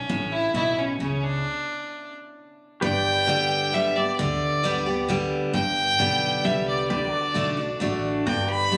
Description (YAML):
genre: honky-tonk and classic country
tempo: 132 BPM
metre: 3/4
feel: straight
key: G major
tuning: A4 = 441 Hz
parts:
  - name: clear fiddle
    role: melody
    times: 0.0-8.8 s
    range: C#4 to B5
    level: -27 LUFS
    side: equal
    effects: none
  - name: picked steel-string acoustic guitar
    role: accompaniment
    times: 0.0-8.8 s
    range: G2 to G4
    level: -29 LUFS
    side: equal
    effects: none
  - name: upright bass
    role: bass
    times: 0.0-8.8 s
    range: G1 to D2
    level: -34 LUFS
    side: equal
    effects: none
  - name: pedal steel guitar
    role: sustained chords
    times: 2.8-8.8 s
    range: F#4 to D5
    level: -34 LUFS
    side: equal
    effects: none
room: light reverb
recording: recorded on a phone in the room, club reverb, compression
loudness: -24 LUFS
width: mono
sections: 0.0-2.8 A section; 2.8-8.8 B section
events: stop 1.5-2.8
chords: 0.1 A; 1.5 N.C.; 2.8 G; 6.9 D; 8.3 G